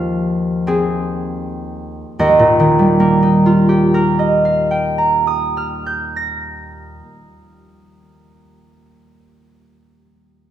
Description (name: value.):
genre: classical, solo harp piece.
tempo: 40 BPM.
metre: 3/4.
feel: rubato.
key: Eb major.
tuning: A4 = 437 Hz.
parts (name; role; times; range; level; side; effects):
concert harp; solo; 0.0-8.2 s; Eb2 to Bb6; -14 LUFS; right 1 dB; none.
room: wet recital hall reverb, RT60 1.6 s.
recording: heard from further back in the room.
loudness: -13 LUFS.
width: side -11 dB against mid.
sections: 0.0-2.2 A section; 2.2-6.7 B section.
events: slowing down 0.0-2.2.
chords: 0.0 Fm7/Eb; 2.2 Ebadd9.